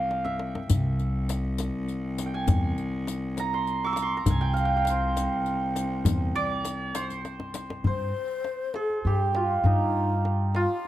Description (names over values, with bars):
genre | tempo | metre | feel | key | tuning
Persian modal ensemble | 67 BPM (dotted quarters) | 6/8 | straight | C dastgah homayun, G dastgah shur from 7.9 s | A4 = 441 Hz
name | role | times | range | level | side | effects
santur | melody | 0.0-10.9 s | Eb4 to E6 | -29 LUFS | right 3 dB | none
bright cello | drone | 0.0-7.9 s | C2 | -32 LUFS | left 2 dB | none
tombak | percussion | 0.1-10.9 s | none | -27 LUFS | left 2 dB | none
upright bass | bass | 0.7-10.6 s | C2 to G2 | -27 LUFS | equal | none
riq | percussion | 0.7-7.7 s | none | -35 LUFS | left 7 dB | none
breathy low ney | second line | 7.9-10.9 s | Eb4 to C5 | -31 LUFS | left 5 dB | none
room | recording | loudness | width
light reverb | close, detailed microphones | -24 LUFS | side -13 dB against mid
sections
0.0-7.9 A section; 7.9-10.9 B section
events
drum fill 0.1-0.7, 7.3-7.9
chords
none